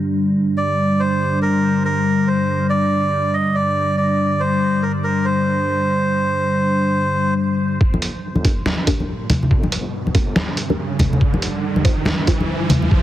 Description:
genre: deep dubstep.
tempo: 141 BPM.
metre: 4/4.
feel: swing 60% on 16ths, half-time.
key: G minor.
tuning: A4 = 438 Hz.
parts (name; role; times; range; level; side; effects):
dark analog pad; sustained chords; 0.0-13.0 s; G3 to D4; -20 LUFS; left 1 dB; chorus.
melodica; melody; 0.6-7.3 s; Bb4 to Eb5; -20 LUFS; right 1 dB; dub echo.
deep soft wobble bass; bass; 7.8-13.0 s; F1 to G1; -32 LUFS; equal; chorus, high-pass filter.
electronic kick drum; drums; 7.8-13.0 s; none; -18 LUFS; equal; none.
riser; sound effects; 9.1-13.0 s; none; -26 LUFS; right 2 dB; none.
congas; percussion; 7.9-12.9 s; none; -20 LUFS; left 1 dB; none.
trip hop sampler-style drum kit; drums; 8.0-12.8 s; hi-hat, snare drum; -24 LUFS; right 1 dB; none.
filtered dub chord stab; stabs; 8.4-12.4 s; D4 to C5; -27 LUFS; right 1 dB; phaser, analog chorus, dub echo.
room: light reverb, digital ambience.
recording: heavily compressed radio sound, multiband compression.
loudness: -16 LUFS.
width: side -13 dB against mid.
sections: 0.0-7.8 A section; 7.8-13.0 B section.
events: build-up 7.8-13.0; filter sweep on synth stab 7.8-13.0; filter sweep on analog synth pad 7.8-13.0; riser 9.1-13.0.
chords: 0.0 G5; 7.8 Gm; 11.2 Fm.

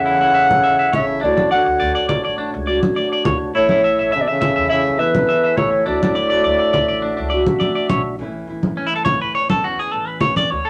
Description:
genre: highlife guitar band.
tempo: 103 BPM.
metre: 4/4.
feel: swing 53% on 16ths.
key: A major.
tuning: A4 = 440 Hz.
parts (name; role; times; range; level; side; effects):
breathy clarinet; melody; 0.0-7.6 s; B4 to F#5; -19 LUFS; equal; none.
mellow trombone; second line; 0.0-7.6 s; E2 to D3; -26 LUFS; equal; none.
nylon-string guitar; accompaniment; 0.0-10.7 s; E2 to F#4; -28 LUFS; equal; none.
tonewheel organ; sustained chords; 0.0-8.2 s; D4 to E5; -29 LUFS; equal; slow rotary speaker.
clean electric guitar; arpeggios; 0.0-10.7 s; C#4 to E5; -24 LUFS; equal; none.
upright bass; bass; 0.0-10.7 s; F#1 to A2; -34 LUFS; equal; none.
congas; percussion; 0.5-10.5 s; none; -24 LUFS; equal; none.
room: moderate club reverb, RT60 0.5 s.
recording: none.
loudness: -17 LUFS.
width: mono.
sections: 0.0-8.2 A section; 8.2-10.7 B section.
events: clean electric guitar solo 8.2-10.7.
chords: 0.0 A; 1.2 Dmaj7; 3.5 A; 5.9 Dmaj7; 8.2 A.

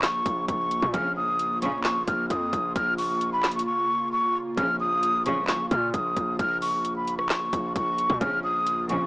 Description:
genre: hip hop, trap.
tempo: 132 BPM.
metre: 4/4.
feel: half-time.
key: Bb minor.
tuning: A4 = 440 Hz.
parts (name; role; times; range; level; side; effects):
breathy mellow silver concert flute; melody; 0.0-9.1 s; Cb6 to F6; -25 LUFS; equal; low-pass filter.
airy breathy pad; sustained chords; 0.0-9.1 s; Db3 to F4; -33 LUFS; equal; chorus.
distorted 808-style bass; bass; 0.0-9.1 s; Bb1 to Bb2; -33 LUFS; equal; distortion.
trap drum kit; drums; 0.0-9.0 s; handclaps, hi-hat, kick drum, rim click, snare drum; -28 LUFS; equal; none.
rich symphonic string section; stabs; 0.9-1.8, 4.6-5.5, 8.2-9.1 s; Bb1 to Db3; -31 LUFS; right 1 dB; none.
room: light reverb.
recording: vinyl crackle, small speaker sound.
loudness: -23 LUFS.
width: side -26 dB against mid.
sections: 0.0-9.1 A section.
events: drums muted 3.7-4.6.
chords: 0.0 Bbm.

